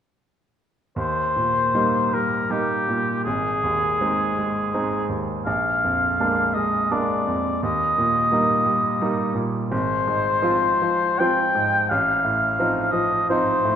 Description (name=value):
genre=classical, romantic duo for oboe and grand piano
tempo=74-88 BPM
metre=3/4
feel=rubato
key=Eb major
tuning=A4 = 440 Hz
part: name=mellow oboe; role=melody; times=1.0-13.8 s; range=G4 to G5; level=-21 LUFS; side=left 1 dB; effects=none
part: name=bright grand piano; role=accompaniment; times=1.0-13.8 s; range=Ab1 to F4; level=-24 LUFS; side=right 2 dB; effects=none
room=wet concert hall reverb, RT60 1.9 s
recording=minimal, uncompressed stereo recording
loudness=-19 LUFS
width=side -9 dB against mid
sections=1.0-13.8 A section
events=none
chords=1.0 Eb; 3.3 Ab; 5.5 Bb7; 7.6 Eb; 9.7 Fm/Ab; 11.9 F7/A